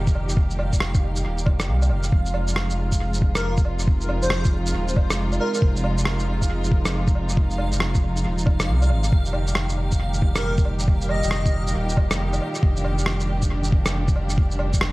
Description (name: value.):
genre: future garage.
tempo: 137 BPM.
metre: 4/4.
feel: swing 64% on 16ths.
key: F dorian.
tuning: A4 = 440 Hz.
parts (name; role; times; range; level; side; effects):
warm symphonic string section; sustained chords; 0.0-14.9 s; Bb2 to G4; -28 LUFS; equal; sidechain pumping.
warm sub bass; bass; 0.0-14.9 s; Eb1 to C2; -24 LUFS; equal; sidechain pumping.
backwards swelling texture; texture; 0.0-14.9 s; F5; -37 LUFS; right 2 dB; built-in reverb.
electronic kick drum; drums; 0.1-14.8 s; none; -19 LUFS; equal; none.
electronic shaker, woodblock and rim click; drums; 0.1-14.9 s; none; -28 LUFS; equal; dub echo.
airy dreamy lead; melody; 3.4-5.6, 10.4-11.7 s; Bb4 to Eb5; -31 LUFS; equal; chorus, dub echo.
room: little or no reverb.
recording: echo-heavy mix, vinyl crackle.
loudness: -19 LUFS.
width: side -20 dB against mid.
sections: 0.0-14.9 A section.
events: none.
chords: 0.0 Eb; 2.1 Fm7; 9.1 Eb.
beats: | 0.37 0.81 1.24 1.68 | 2.12 2.56 3.00 3.43 | 3.87 4.31 4.75 5.18 | 5.62 6.06 6.50 6.94 | 7.38 7.81 8.25 8.69 | 9.13 9.56 10.00 10.44 | 10.88 11.32 11.76 12.19 | 12.63 13.07 13.51 13.94 | 14.38 14.82.